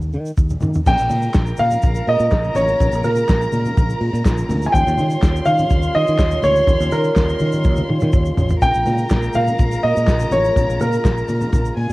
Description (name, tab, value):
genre	disco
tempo	124 BPM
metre	4/4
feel	straight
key	Bb dorian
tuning	A4 = 440 Hz
part	fingered electric bass	bass	0.0-11.9 s	A1 to Eb3	-20 LUFS	equal	none
part	egg shaker	percussion	0.0-11.9 s	none	-44 LUFS	right 4 dB	none
part	congas	percussion	0.1-11.9 s	none	-28 LUFS	left 1 dB	none
part	warm soul drum kit	drums	0.4-11.9 s	crash cymbal, handclaps, hi-hat, kick drum, snare drum, toms	-18 LUFS	equal	cassette tape
part	warm concert grand piano	melody	0.9-11.7 s	Bb4 to Ab5	-19 LUFS	equal	cassette tape
part	rich chamber string section	second line	0.9-11.9 s	Ab4 to C6	-26 LUFS	right 2 dB	cassette tape
part	mellow French horn section	sustained chords	0.9-11.9 s	Db3 to F4	-28 LUFS	equal	cassette tape
room	light reverb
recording	home recording on cassette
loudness	-15 LUFS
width	side -20 dB against mid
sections	0.9-11.9 A section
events	drum fill 0.4-0.9, 7.6-8.6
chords	0.0 N.C.; 0.9 Bbm7; 4.7 Eb9; 8.6 Bbm7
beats	0.38 | 0.86 1.35 1.83 2.32 | 2.80 3.29 3.77 4.25 | 4.74 5.22 5.71 6.19 | 6.67 7.16 7.64 8.13 | 8.61 9.10 9.58 10.07 | 10.55 11.04 11.53